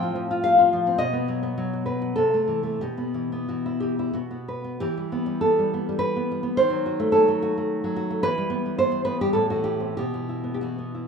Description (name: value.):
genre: romantic piece for solo classical guitar.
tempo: 87-112 BPM.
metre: 3/4.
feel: rubato.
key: E minor.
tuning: A4 = 440 Hz.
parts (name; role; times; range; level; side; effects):
nylon-string guitar; solo; 0.0-11.1 s; A2 to G5; -22 LUFS; equal; none.
room: moderate recital hall reverb, RT60 1.5 s.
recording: minimal, uncompressed stereo recording.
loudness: -22 LUFS.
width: side -6 dB against mid.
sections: 0.0-4.8 A section; 4.8-11.1 B section.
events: none.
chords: 0.0 F/A; 1.0 B; 2.2 Am/C; 2.8 Bsus4; 4.2 N.C.; 4.8 Em; 6.6 D#dim7; 8.2 Em; 9.4 Am; 10.0 Bsus4.